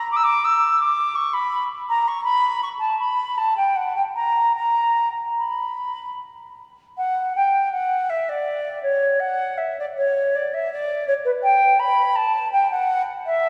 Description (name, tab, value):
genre	classical, baroque-style fantasia for unaccompanied flute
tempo	72-86 BPM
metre	3/4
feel	rubato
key	B minor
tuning	A4 = 440 Hz
part	silver concert flute	solo	0.0-13.5 s	B4 to E6	-21 LUFS	equal	none
room	wet church reverb, RT60 3.6 s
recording	recorded in a church or concert hall, studio ambience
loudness	-21 LUFS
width	mono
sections	0.0-7.0 A section; 7.0-13.5 B section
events	none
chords	none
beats	| 0.10 0.80 1.52 | 2.26 2.99 3.76 | 4.56 5.38 6.17 | 6.98 7.73 8.47 | 9.22 9.98 10.71 | 11.43 12.15 12.88